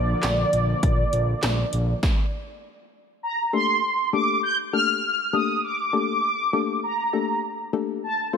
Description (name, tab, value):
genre	synth-pop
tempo	100 BPM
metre	4/4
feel	straight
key	G minor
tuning	A4 = 440 Hz
part	mellow synth brass	melody	0.0-8.4 s	D5 to G6	-24 LUFS	right 1 dB	chorus, digital delay
part	brassy analog pad	sustained chords	0.0-2.0 s	D3 to Bb3	-31 LUFS	left 1 dB	chorus, tremolo
part	smooth synth bass	bass	0.0-1.9 s	Bb1	-24 LUFS	equal	none
part	80s electronic pad drums	drums	0.2-2.2 s	handclaps, hi-hat, kick drum, snare drum	-24 LUFS	equal	none
part	soft round pluck	accompaniment	3.5-8.4 s	A3 to C5	-27 LUFS	left 8 dB	chorus
room	light reverb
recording	none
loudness	-21 LUFS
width	side -6 dB against mid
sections	0.0-3.2 A section; 3.2-8.4 B section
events	stop 2.0-3.2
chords	0.0 Bb; 3.2 Gmadd9